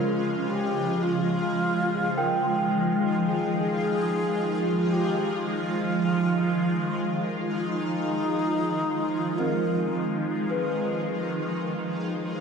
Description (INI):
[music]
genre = ambient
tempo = 54 BPM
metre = 4/4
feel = straight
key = unclear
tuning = A4 = 440 Hz
[part]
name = alto flute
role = melody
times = 0.0-9.9 s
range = Eb4 to Bb4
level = -30 LUFS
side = left 1 dB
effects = tape echo
[part]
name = shimmering ambient pad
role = sustained chords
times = 0.0-12.4 s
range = Db3 to F4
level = -25 LUFS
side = equal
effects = chorus, built-in reverb, phaser
[part]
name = celesta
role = arpeggios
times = 0.0-12.4 s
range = C4 to G5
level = -32 LUFS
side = right 2 dB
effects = tape echo
[sound]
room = wet concert hall reverb, RT60 2.0 s, small room reverb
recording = nothing above 10.8 kHz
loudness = -24 LUFS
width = side -6 dB against mid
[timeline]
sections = 0.0-12.4 A section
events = none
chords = 0.0 Dbmaj7; 1.1 Fm7; 10.0 Abm6